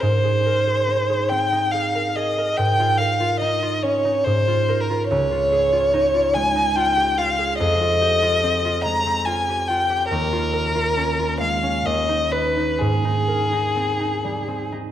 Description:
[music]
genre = classical, impressionist duo for violin and harp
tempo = 62-73 BPM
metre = 3/4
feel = rubato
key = Ab major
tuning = A4 = 440 Hz
[part]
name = rich violin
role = melody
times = 0.0-14.7 s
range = Ab4 to Bb5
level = -20 LUFS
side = left 1 dB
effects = none
[part]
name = concert harp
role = accompaniment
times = 0.0-14.9 s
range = Db2 to B4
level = -23 LUFS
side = right 2 dB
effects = none
[sound]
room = moderate scoring stage reverb, RT60 1.6 s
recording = dark, warm production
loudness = -18 LUFS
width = side -11 dB against mid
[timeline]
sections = 0.0-14.9 A section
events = none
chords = 0.0 Abadd9; 2.6 Ebsus2/Ab; 4.3 Ab69; 5.1 Dbadd9; 7.6 Fm9; 10.1 Eb11; 11.8 Badd9/D#; 12.8 Abmaj9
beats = | 0.01 0.87 1.72 | 2.58 3.40 4.25 | 5.09 5.93 6.76 | 7.59 8.43 9.26 | 10.10 10.96 11.85 | 12.80 13.76 14.72

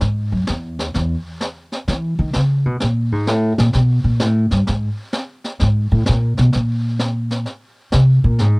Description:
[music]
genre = jazz piano trio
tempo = 129 BPM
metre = 4/4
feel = swing 67% on 8ths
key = unclear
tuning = A4 = 441 Hz
[part]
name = upright bass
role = bass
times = 0.0-8.6 s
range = D#2 to Fb3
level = -15 LUFS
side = equal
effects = none
[part]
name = brushed snare drum and snare drum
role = drums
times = 0.0-8.6 s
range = none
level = -24 LUFS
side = equal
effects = none
[sound]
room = little or no reverb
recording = dry, close 1970s-style studio recording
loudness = -16 LUFS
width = side -38 dB against mid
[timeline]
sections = 0.0-8.6 A section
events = upright bass solo 0.0-8.6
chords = none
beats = | 0.01 0.48 0.94 1.41 | 1.88 2.34 2.81 3.28 | 3.74 4.21 4.67 5.14 | 5.61 6.07 6.54 7.00 | 7.47 7.93 8.40

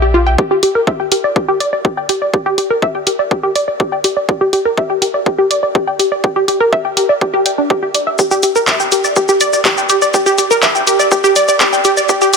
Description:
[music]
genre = melodic techno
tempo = 123 BPM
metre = 4/4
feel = straight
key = G dorian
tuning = A4 = 439 Hz
[part]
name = wide unison pluck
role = arpeggios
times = 0.0-12.4 s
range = D4 to G5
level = -12 LUFS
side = equal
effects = sidechain pumping, ping-pong delay
[part]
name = electronic kick drum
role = drums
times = 0.4-12.2 s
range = none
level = -17 LUFS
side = equal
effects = overdrive, high-pass filter on kick
[part]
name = techno drum kit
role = drums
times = 0.6-12.4 s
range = handclaps, hi-hat, shaker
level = -15 LUFS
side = left 1 dB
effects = sidechain pumping on hats, sidechain pumping on perc
[sound]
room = light reverb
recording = dense, heavily limited modern master, high-pass filter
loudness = -11 LUFS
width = side -5 dB against mid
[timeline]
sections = 0.4-12.4 A section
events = build-up 0.4-12.4; filter sweep on synth pluck 0.4-12.4; filter sweep 0.4-12.4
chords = none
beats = | 0.38 0.87 1.36 1.85 | 2.34 2.82 3.31 3.80 | 4.29 4.78 5.26 5.75 | 6.24 6.73 7.21 7.70 | 8.19 8.68 9.16 9.65 | 10.14 10.63 11.12 11.60 | 12.09

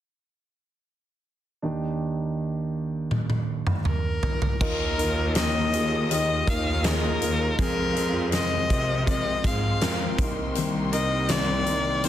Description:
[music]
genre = pop ballad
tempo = 81 BPM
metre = 4/4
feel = straight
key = Eb major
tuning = A4 = 440 Hz
[part]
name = warm concert grand piano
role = accompaniment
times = 1.6-12.1 s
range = Eb2 to Bb4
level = -30 LUFS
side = right 3 dB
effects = none
[part]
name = huge arena drum kit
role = drums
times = 3.1-12.1 s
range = crash cymbal, hi-hat, kick drum, snare drum, toms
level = -27 LUFS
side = equal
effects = none
[part]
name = warm violin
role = melody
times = 3.9-12.1 s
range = Bb4 to F5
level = -28 LUFS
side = left 3 dB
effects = none
[part]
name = warm studio string section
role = sustained chords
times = 4.6-12.1 s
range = Eb4 to Eb6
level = -37 LUFS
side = left 3 dB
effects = none
[part]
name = fingerpicked steel-string acoustic guitar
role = arpeggios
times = 4.6-12.1 s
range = F2 to G4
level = -33 LUFS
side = left 5 dB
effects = none
[part]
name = clear studio cello section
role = bass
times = 4.6-12.1 s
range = C2 to C3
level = -28 LUFS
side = equal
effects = none
[sound]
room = light reverb, small room ambience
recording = dense, heavily limited modern master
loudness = -22 LUFS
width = side -11 dB against mid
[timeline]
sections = 1.6-4.6 A section; 4.6-12.1 B section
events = drum fill 3.1-4.6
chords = 1.6 Ebmaj7; 4.6 Ebsus2; 7.6 Fm; 10.2 Cm7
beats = | 1.63 2.38 3.12 3.86 | 4.61 5.36 6.11 6.85 | 7.59 8.33 9.07 9.81 | 10.55 11.29 12.04

